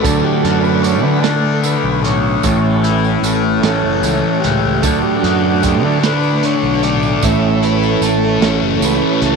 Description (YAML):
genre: psychedelic rock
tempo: 50 BPM (dotted quarters)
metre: 6/8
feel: straight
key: A major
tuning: A4 = 439 Hz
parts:
  - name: combo organ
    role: sustained chords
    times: 0.0-9.4 s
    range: E3 to E5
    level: -17 LUFS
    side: right 14 dB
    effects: none
  - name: fuzz guitar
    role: riff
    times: 0.0-9.4 s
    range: A2 to F#4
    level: -16 LUFS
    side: left 12 dB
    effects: distortion, phaser
  - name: growling fingered electric bass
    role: bass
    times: 0.0-9.4 s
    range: F#1 to D3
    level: -19 LUFS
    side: equal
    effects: overdrive
  - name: tanpura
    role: drone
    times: 0.0-9.4 s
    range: A2 to A3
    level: -25 LUFS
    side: right 1 dB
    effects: none
  - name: crunchy breakbeat drum kit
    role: drums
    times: 0.0-9.4 s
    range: hi-hat, kick drum, snare drum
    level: -21 LUFS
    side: right 5 dB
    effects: none
  - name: tambourine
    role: percussion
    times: 0.1-9.0 s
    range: none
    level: -29 LUFS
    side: right 16 dB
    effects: none
room: light reverb, small room ambience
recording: 1960s-style stereo with parts hard left and right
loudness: -12 LUFS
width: side -5 dB against mid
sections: 0.0-9.4 A section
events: transistor combo organ solo 0.0-9.4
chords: 0.1 D; 2.4 A; 4.8 D; 7.2 A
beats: | 0.06 1.25 | 2.45 3.65 | 4.84 6.04 | 7.23 8.43